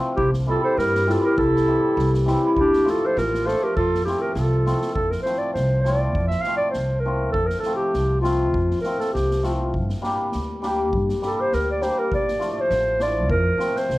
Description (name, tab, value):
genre	balkan folk, Balkan wedding band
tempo	101 BPM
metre	2/4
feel	swing 55% on 16ths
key	F major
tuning	A4 = 439 Hz
part	cimbalom	accompaniment	0.0-14.0 s	E3 to G4	-25 LUFS	left 2 dB	none
part	mellow clarinet	melody	0.2-14.0 s	E4 to F5	-22 LUFS	equal	plate reverb
part	warm clarinet	second line	0.2-4.9 s	D4 to A4	-27 LUFS	right 2 dB	none
part	upright bass	bass	0.2-14.0 s	A1 to G2	-24 LUFS	equal	none
part	street-band drum kit	percussion	0.2-14.0 s	kick drum, snare drum	-32 LUFS	equal	none
room	light reverb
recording	worn, warbling old tape, cassette tape, warbly pitch drift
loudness	-19 LUFS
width	side -18 dB against mid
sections	0.0-5.0 A section; 5.0-14.0 B section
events	clarinet solo 5.0-14.0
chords	0.2 C; 2.6 Dm; 3.8 F; 9.7 Gm; 12.1 Dm; 13.3 F